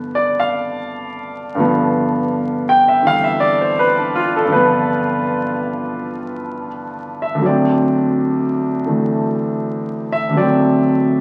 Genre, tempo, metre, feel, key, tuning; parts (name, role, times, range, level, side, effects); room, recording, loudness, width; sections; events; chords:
solo jazz; 82 BPM; 4/4; swing 69% on 8ths; G mixolydian; A4 = 440 Hz
warm grand piano; solo; 0.0-11.2 s; D2 to G5; -18 LUFS; equal
wet studio reverb, RT60 0.6 s; very old 78 rpm record, vinyl crackle; -17 LUFS; mono
0.0-11.2 A section
grand piano solo 0.0-11.2
0.0 G7; 7.4 D7